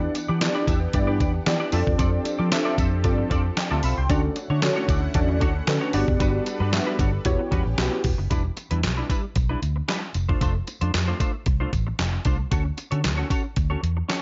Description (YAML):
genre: early-eighties boogie funk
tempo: 114 BPM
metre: 4/4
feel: straight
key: E dorian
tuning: A4 = 444 Hz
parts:
  - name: funky polysynth comp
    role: accompaniment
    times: 0.0-8.1 s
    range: B3 to C6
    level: -29 LUFS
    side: equal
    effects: chorus
  - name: lush unison pad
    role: sustained chords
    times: 0.0-8.3 s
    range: D3 to F#5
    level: -36 LUFS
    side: equal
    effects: chorus, phaser
  - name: semi-hollow electric guitar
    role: riff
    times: 0.0-14.2 s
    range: G3 to E5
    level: -34 LUFS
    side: equal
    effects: analog chorus
  - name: vintage muted fingered electric bass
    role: bass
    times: 0.0-14.0 s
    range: E1 to F3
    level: -27 LUFS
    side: equal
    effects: none
  - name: tambourine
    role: percussion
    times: 0.1-14.2 s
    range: none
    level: -45 LUFS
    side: equal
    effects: none
  - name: detuned 8-bit digital drum machine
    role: drums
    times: 0.2-14.2 s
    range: handclaps, hi-hat, kick drum, snare drum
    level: -28 LUFS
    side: equal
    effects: gated reverb
room: little or no reverb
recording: nothing above 7.6 kHz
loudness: -24 LUFS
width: mono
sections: 0.0-8.3 A section; 8.3-14.2 B section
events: none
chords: 0.0 Em7; 1.7 F6; 4.1 Dmaj7; 5.9 Gmaj7; 7.3 Em69; 8.3 Em7; 10.2 F6; 12.5 Dmaj7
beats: 0.41 0.94 1.47 | 1.99 2.52 3.04 3.57 | 4.10 4.62 5.15 5.68 | 6.20 6.73 7.25 7.78 | 8.31 8.83 9.36 9.89 | 10.41 10.94 11.47 11.99 | 12.52 13.04 13.57 14.10